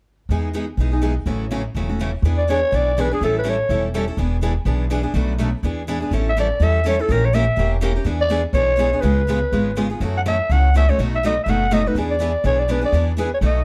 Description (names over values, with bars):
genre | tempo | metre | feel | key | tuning
acoustic string swing (jazz manouche) | 247 BPM | 4/4 | swing 56% on 8ths | E mixolydian | A4 = 439 Hz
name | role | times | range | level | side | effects
picked steel-string acoustic guitar | accompaniment | 0.3-13.6 s | B2 to A#4 | -27 LUFS | equal | none
picked steel-string acoustic guitar | accompaniment | 0.3-13.6 s | B2 to B4 | -34 LUFS | equal | none
upright bass | bass | 0.3-13.6 s | E1 to F#2 | -22 LUFS | equal | none
growling clarinet | melody | 2.4-3.8, 6.3-13.6 s | G#4 to F#5 | -22 LUFS | equal | none
room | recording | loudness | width
light reverb | dark, warm production, faint mains hum | -20 LUFS | mono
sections
0.3-2.2 A section; 2.2-13.6 B section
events
none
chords
0.3 Emaj7; 1.3 A6; 2.2 E7; 3.2 A7; 4.2 E7; 5.1 Bm7; 5.6 E7; 6.1 A7; 7.1 A#dim7; 8.1 E7; 9.0 C#7; 10.0 F#m7; 11.0 B7; 12.0 E7